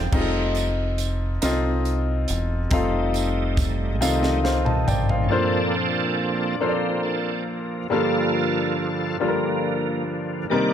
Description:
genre	slow gospel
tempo	46 BPM (dotted quarters)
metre	6/8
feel	straight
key	unclear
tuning	A4 = 440 Hz
part	clear upright piano	accompaniment	0.0-10.7 s	G2 to A5	-24 LUFS	left 3 dB	none
part	bright tonewheel organ	sustained chords	0.0-10.7 s	C3 to D5	-26 LUFS	right 3 dB	overdrive, chorus vibrato, slow rotary speaker
part	deep dub fingered electric bass	bass	0.0-5.3 s	E1 to C2	-25 LUFS	equal	none
part	crisp fusion drum kit	drums	0.1-5.3 s	crash cymbal, hi-hat, kick drum, snare drum, toms	-26 LUFS	equal	none
part	tambourine	percussion	0.6-5.3 s	none	-34 LUFS	right 13 dB	none
room	light reverb, small room ambience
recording	none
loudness	-20 LUFS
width	side -9 dB against mid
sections	0.1-5.3 A section; 5.3-10.7 B section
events	tonewheel organ solo 0.1-5.3, 5.3-10.7; drum fill 4.0-5.3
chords	0.1 F7; 5.3 Bbmaj9; 7.9 Gm9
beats	| 0.12 1.42 | 2.71 4.01 | 5.31 6.61 | 7.90 9.20 | 10.50

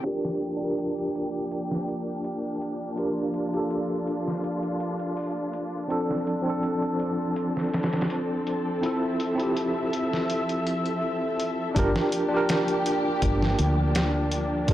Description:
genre	trip hop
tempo	82 BPM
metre	4/4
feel	straight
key	G dorian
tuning	A4 = 440 Hz
part	tine electric piano	accompaniment	0.0-14.7 s	F3 to Bb4	-27 LUFS	right 1 dB	fast stereo tremolo, low-pass filter, tape echo
part	dark studio string section	sustained chords	0.1-14.7 s	F3 to A5	-30 LUFS	left 1 dB	low-pass filter
part	trip hop sampler-style drum kit	drums	0.1-14.7 s	hi-hat, kick drum, snare drum	-29 LUFS	equal	low-pass filter on kick, low-pass filter on hats, low-pass filter on snare
part	deep dub fingered electric bass	bass	11.8-14.7 s	G1 to D2	-26 LUFS	equal	tube saturation
room	moderate echo chamber reverb, RT60 2.1 s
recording	blown-out, overdriven recording, vinyl crackle, overdrive, low-pass filter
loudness	-24 LUFS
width	side -13 dB against mid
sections	0.1-11.8 A section; 11.8-14.7 B section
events	filter sweep on tine electric piano 0.1-11.8; filter sweep on string section 0.1-11.8; filter sweep 0.1-11.8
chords	0.1 Gm7; 5.9 Dm7/F; 8.8 Fmaj7; 11.8 Gm7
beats	| 0.05 0.78 1.51 2.25 | 2.98 3.71 4.44 5.17 | 5.91 6.64 7.37 8.10 | 8.83 9.56 10.29 11.03 | 11.76 12.49 13.22 13.95 | 14.69

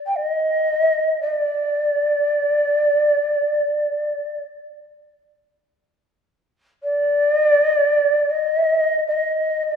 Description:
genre	japanese traditional, Japanese chamber music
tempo	free time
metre	none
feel	none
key	unclear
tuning	A4 = 440 Hz
part	breathy shakuhachi	solo	0.1-9.8 s	D5 to G5	-17 LUFS	equal	none
room	moderate scoring stage reverb, RT60 1.6 s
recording	recorded in a church or concert hall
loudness	-17 LUFS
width	side -7 dB against mid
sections	0.0-9.8 A section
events	none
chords	none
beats	free time

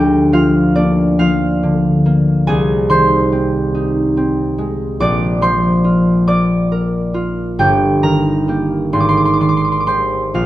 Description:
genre	classical, solo harp piece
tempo	40-48 BPM (dotted quarters)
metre	6/8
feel	rubato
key	unclear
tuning	A4 = 440 Hz
part	concert harp	solo	0.0-10.5 s	G1 to D6	-12 LUFS	equal	none
room	light reverb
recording	close, detailed microphones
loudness	-12 LUFS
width	side -14 dB against mid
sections	0.0-10.5 A section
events	none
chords	0.0 Bb/D; 2.5 Ab/C; 5.0 Bb; 7.6 Eb/G; 8.9 Abmaj7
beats	1.18 | 2.46 3.73 | 4.99 6.25 | 7.58 8.93 | 10.34

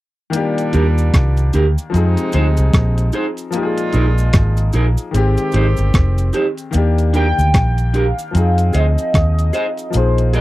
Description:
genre	lovers rock reggae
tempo	75 BPM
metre	4/4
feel	swing 60% on 16ths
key	Eb major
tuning	A4 = 444 Hz
part	warm horn section	second line	0.3-6.3 s	Bb2 to G4	-25 LUFS	right 3 dB	none
part	clear concert grand piano	accompaniment	0.3-10.4 s	Eb3 to Ab4	-22 LUFS	left 4 dB	none
part	gated 80s digital drum machine	drums	0.3-10.4 s	hi-hat, kick drum, rim click	-16 LUFS	equal	overdrive
part	cabasa	percussion	0.3-10.4 s	none	-37 LUFS	right 6 dB	none
part	electric guitar through a small old amp	stabs	0.7-10.4 s	D4 to Eb5	-19 LUFS	right 3 dB	none
part	vintage muted fingered electric bass	bass	0.7-10.4 s	F1 to F2	-14 LUFS	equal	none
part	warm velvety synth lead	melody	7.2-10.4 s	C5 to G5	-21 LUFS	left 1 dB	chorus, tape echo
room	little or no reverb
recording	dry, close 1970s-style studio recording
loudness	-13 LUFS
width	side -17 dB against mid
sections	0.3-6.7 A section; 6.7-10.4 B section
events	none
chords	0.3 Ebmaj7; 1.9 Fm7; 3.5 Bb7sus4; 5.1 Abmaj7; 6.7 Ebmaj7; 8.3 Fm7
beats	| 0.33 1.13 1.93 2.73 | 3.53 4.33 5.13 5.93 | 6.74 7.54 8.34 9.14 | 9.94

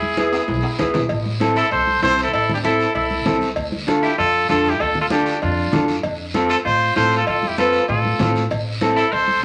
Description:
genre	latin, cumbia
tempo	194 BPM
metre	4/4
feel	straight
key	A minor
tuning	A4 = 440 Hz
part	bright trumpet	melody	0.0-9.4 s	F4 to C5	-22 LUFS	equal	none
part	semi-hollow electric guitar	second line	0.0-9.4 s	D4 to A4	-27 LUFS	equal	none
part	upright bass	bass	0.0-9.4 s	A1 to A2	-29 LUFS	equal	none
part	congas	percussion	0.0-9.4 s	none	-29 LUFS	equal	none
part	mellow electric guitar	accompaniment	0.2-9.0 s	B3 to C5	-24 LUFS	equal	spring reverb
part	guiro	percussion	0.2-9.4 s	none	-35 LUFS	equal	none
part	timbales and cowbell	percussion	0.2-9.3 s	none	-31 LUFS	equal	none
room	wet small room reverb, RT60 0.6 s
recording	none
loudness	-19 LUFS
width	mono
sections	0.0-1.1 A section; 1.1-9.4 B section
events	drum fill 0.3-1.1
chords	0.0 E7; 1.1 Am; 3.6 Dm; 6.0 F; 8.5 Am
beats	0.17 0.48 0.79 | 1.10 1.41 1.72 2.02 | 2.33 2.64 2.95 3.26 | 3.57 3.88 4.18 4.49 | 4.80 5.11 5.42 5.73 | 6.04 6.34 6.65 6.96 | 7.27 7.58 7.89 8.20 | 8.51 8.81 9.12 9.43

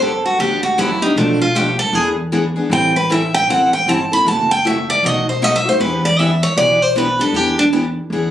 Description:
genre	acoustic string swing (jazz manouche)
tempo	155 BPM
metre	4/4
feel	swing 62% on 8ths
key	E minor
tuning	A4 = 440 Hz
part	picked steel-string acoustic guitar	melody	0.0-7.7 s	D4 to B5	-15 LUFS	right 1 dB	none
part	picked steel-string acoustic guitar	accompaniment	0.0-8.3 s	B2 to A4	-19 LUFS	left 2 dB	none
part	upright bass	bass	0.0-8.3 s	F#1 to E2	-23 LUFS	equal	none
room	light reverb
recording	recorded on a phone in the room, club reverb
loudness	-13 LUFS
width	side -11 dB against mid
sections	0.0-8.3 A section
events	steel-string acoustic guitar solo 0.0-8.3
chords	0.0 Gmaj7; 1.2 Bm7b5; 1.9 E7; 2.7 Am7; 4.3 F#m7b5; 5.0 B7; 5.8 Em7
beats	0.00 0.39 0.77 | 1.16 1.55 1.93 2.32 | 2.71 3.09 3.48 3.87 | 4.25 4.64 5.03 5.41 | 5.80 6.18 6.57 6.95 | 7.34 7.72 8.11

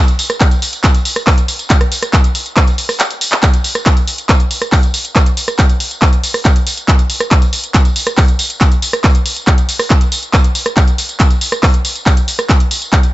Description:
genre	techno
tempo	139 BPM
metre	4/4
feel	straight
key	none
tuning	none
part	punchy analog drum machine	drums	0.1-13.1 s	handclaps, hi-hat, rim click, tambourine	-15 LUFS	equal	sidechain pumping on hats, sidechain pumping on perc
part	electronic kick drum	drums	0.4-13.0 s	none	-10 LUFS	equal	none
room	little or no reverb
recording	nothing above 7.9 kHz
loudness	-10 LUFS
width	side -17 dB against mid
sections	0.0-13.1 A section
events	kick drops out 3.0-3.4; drum fill 3.0-3.4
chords	none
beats	0.41 0.84 1.27 | 1.70 2.13 2.57 3.00 | 3.43 3.86 4.29 4.72 | 5.16 5.59 6.02 6.45 | 6.88 7.31 7.75 8.18 | 8.61 9.04 9.47 9.90 | 10.34 10.77 11.20 11.63 | 12.06 12.49 12.93

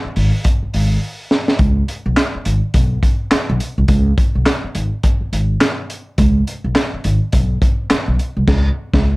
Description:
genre	funk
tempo	105 BPM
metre	4/4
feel	swing 60% on 16ths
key	unclear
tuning	A4 = 440 Hz
part	upright bass	bass	0.0-9.1 s	Ab1 to Db2	-16 LUFS	equal	none
part	crunchy breakbeat drum kit	drums	0.2-9.1 s	crash cymbal, handclaps, hi-hat, kick drum, snare drum	-16 LUFS	equal	none
room	little or no reverb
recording	dark, warm production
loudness	-14 LUFS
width	side -22 dB against mid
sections	0.0-9.2 A section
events	drum fill 1.0-1.6; band accent 8.5-9.2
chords	none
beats	0.45 1.02 | 1.59 2.17 2.74 3.31 | 3.89 4.46 5.04 5.61 | 6.18 6.76 7.33 7.90 | 8.48 9.05

